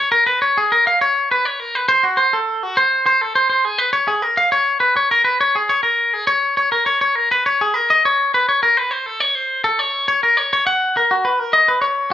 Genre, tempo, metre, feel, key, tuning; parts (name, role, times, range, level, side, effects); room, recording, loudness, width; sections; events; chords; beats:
rock; 68 BPM (dotted quarters); 6/8; straight; B lydian; A4 = 444 Hz
twangy electric guitar; solo; 0.0-12.1 s; F#4 to F#5; -14 LUFS; left 1 dB
light reverb; band playing live in one room; -14 LUFS; side -11 dB against mid
0.0-10.7 A section; 10.7-12.1 B section
| 0.13 1.01 | 1.90 2.78 | 3.66 4.54 | 5.42 6.30 | 7.17 8.05 | 8.92 9.80 | 10.67 11.54